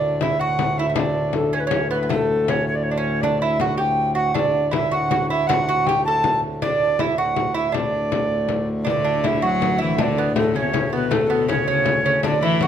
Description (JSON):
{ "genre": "medieval dance", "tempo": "106 BPM (dotted quarters)", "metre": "6/8", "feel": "straight", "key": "D major", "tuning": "A4 = 441 Hz", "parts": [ { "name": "reedy alto recorder", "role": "melody", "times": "0.0-12.7 s", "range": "A4 to A5", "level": "-21 LUFS", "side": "right 1 dB", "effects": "none" }, { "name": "lute", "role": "second line", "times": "0.0-12.7 s", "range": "A3 to A4", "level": "-25 LUFS", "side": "right 4 dB", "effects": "none" }, { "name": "hand-pumped harmonium", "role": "drone", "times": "0.0-12.7 s", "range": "D2 to A2", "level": "-26 LUFS", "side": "equal", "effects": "none" }, { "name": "frame drum", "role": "percussion", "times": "0.2-12.7 s", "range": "none", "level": "-26 LUFS", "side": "left 7 dB", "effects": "none" }, { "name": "rich viola da gamba", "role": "second line", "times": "8.9-12.7 s", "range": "A2 to F#3", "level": "-24 LUFS", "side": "left 6 dB", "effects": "none" } ], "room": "wet recital hall reverb, RT60 1.3 s", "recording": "close, detailed microphones", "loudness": "-18 LUFS", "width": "side -9 dB against mid", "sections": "0.0-8.9 A section; 8.9-12.7 A section", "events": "none", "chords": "none" }